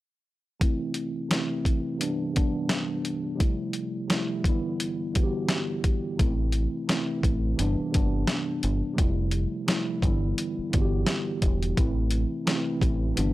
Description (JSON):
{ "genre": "hip hop, boom-bap hip-hop", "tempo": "86 BPM", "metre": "4/4", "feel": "swing 58% on 16ths", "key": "A minor", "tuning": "A4 = 440 Hz", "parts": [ { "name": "mellow tine electric piano", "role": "accompaniment", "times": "0.6-13.3 s", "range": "G2 to G4", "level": "-28 LUFS", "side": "equal", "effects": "medium stereo tremolo, cassette tape, high-pass filter, low-pass filter" }, { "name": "boom bap sampler-style drum kit", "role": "drums", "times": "0.6-13.3 s", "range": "hi-hat, kick drum, snare drum", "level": "-25 LUFS", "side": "equal", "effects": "none" }, { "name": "deep dub fingered electric bass", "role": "bass", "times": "6.2-13.3 s", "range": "E1 to A1", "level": "-27 LUFS", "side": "equal", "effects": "none" } ], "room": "digital ambience", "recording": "dry, gritty hardware recording", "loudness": "-24 LUFS", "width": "side -17 dB against mid", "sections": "0.6-11.8 A section; 11.8-13.3 B section", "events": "filter sweep on tine electric piano 0.6-11.8", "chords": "0.6 Am; 2.0 Cmaj7/G; 3.4 Fmaj7; 4.4 Em7/G; 6.2 Am; 7.6 Cmaj7/G; 9.0 Fmaj7; 10.0 Em7/G; 11.8 Am", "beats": "| 0.61 1.31 2.01 2.70 | 3.40 4.10 4.80 5.49 | 6.19 6.89 7.59 8.29 | 8.98 9.68 10.38 11.08 | 11.77 12.47 13.17" }